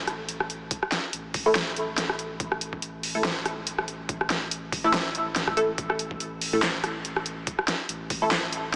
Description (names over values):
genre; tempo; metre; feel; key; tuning
deep dubstep; 142 BPM; 4/4; swing 55% on 16ths, half-time; unclear; A4 = 440 Hz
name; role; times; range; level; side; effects
soft dub sub bass; bass; 0.0-8.8 s; A1; -42 LUFS; equal; tube saturation
dubstep drum kit; drums; 0.1-8.6 s; handclaps, hi-hat, rim click, snare drum; -30 LUFS; equal; none
electronic kick drum; drums; 0.7-8.2 s; none; -37 LUFS; equal; none
filtered dub chord stab; stabs; 1.5-8.3 s; A3 to A4; -31 LUFS; equal; phaser, lush chorus, dub echo
room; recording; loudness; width
moderate huge ambient reverb, RT60 5.2 s; small speaker sound; -28 LUFS; mono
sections
0.0-8.8 A section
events
none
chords
0.0 A5